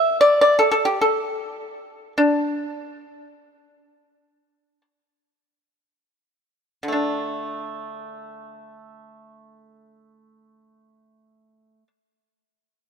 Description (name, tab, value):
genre	chinese traditional, Chinese solo plucked strings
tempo	free time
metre	none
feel	none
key	unclear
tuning	A4 = 439 Hz
part	pipa	solo	0.0-11.9 s	D3 to E5	-19 LUFS	equal	none
room	moderate lush hall reverb, RT60 2.5 s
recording	rough home demo mix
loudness	-18 LUFS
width	side -7 dB against mid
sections	0.0-6.9 A section; 6.9-12.2 B section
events	slowing down 1.9-6.9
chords	none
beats	free time